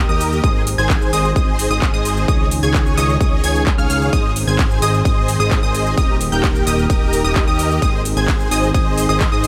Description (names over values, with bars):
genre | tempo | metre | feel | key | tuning
EDM, festival progressive house | 130 BPM | 4/4 | straight | Ab major | A4 = 440 Hz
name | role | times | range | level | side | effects
lush unison pad | sustained chords | 0.0-9.5 s | Eb3 to Ab4 | -26 LUFS | equal | chorus, sidechain pumping
unison pluck | arpeggios | 0.0-9.5 s | Eb6 to Ab6 | -25 LUFS | equal | sidechain pumping, analog delay
big supersaw lead | riff | 0.0-9.5 s | G4 to Ab5 | -25 LUFS | equal | ensemble chorus, sidechain pumping, analog delay
fat analog bass | bass | 0.0-9.5 s | Eb1 to Ab2 | -23 LUFS | equal | sidechain pumping
big-room dance drum kit | drums | 0.2-9.5 s | handclaps, hi-hat, ride cymbal, shaker | -28 LUFS | equal | none
electronic kick drum | drums | 0.4-9.3 s | none | -19 LUFS | equal | none
room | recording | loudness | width
light reverb | none | -16 LUFS | mono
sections
0.0-9.5 A section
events
none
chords
0.4 Ab; 2.3 Dbsus2; 4.1 Ab; 6.0 Eb; 7.8 Ab